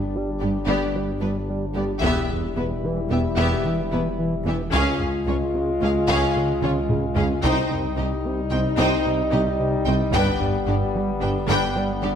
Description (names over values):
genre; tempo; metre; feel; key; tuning
cinematic, hybrid orchestral and electronic film score; 111 BPM; 5/4; straight; unclear; A4 = 440 Hz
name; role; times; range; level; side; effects
mellow French horn section; sustained chords; 0.0-12.2 s; G3 to F4; -26 LUFS; left 3 dB; none
smooth gliding synth bass; riff; 0.0-12.2 s; C2 to G3; -27 LUFS; right 2 dB; none
dark detuned saw bass; bass; 0.0-12.2 s; E1 to Db2; -30 LUFS; equal; none
warm symphonic violin section; melody; 0.4-12.1 s; B4 to G5; -30 LUFS; left 3 dB; none
warm symphonic violin section; second line; 0.4-12.1 s; D4 to C5; -31 LUFS; left 3 dB; none
rich symphonic viola section; accompaniment; 0.4-12.1 s; B3 to Eb4; -29 LUFS; right 1 dB; none
bright symphonic double bass section; bass; 0.4-12.1 s; E1 to Db2; -30 LUFS; right 3 dB; none
warm symphonic cello section; bass; 0.4-12.1 s; C2 to G2; -29 LUFS; right 3 dB; none
taiko ensemble; drums; 2.0-10.7 s; none; -28 LUFS; equal; none
room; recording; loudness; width
moderate scoring stage reverb, RT60 1.4 s; none; -20 LUFS; side -8 dB against mid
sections
0.0-12.2 A section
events
drum fill 6.6-7.4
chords
0.0 G; 2.0 Em; 4.7 Db; 7.4 Cm; 10.1 G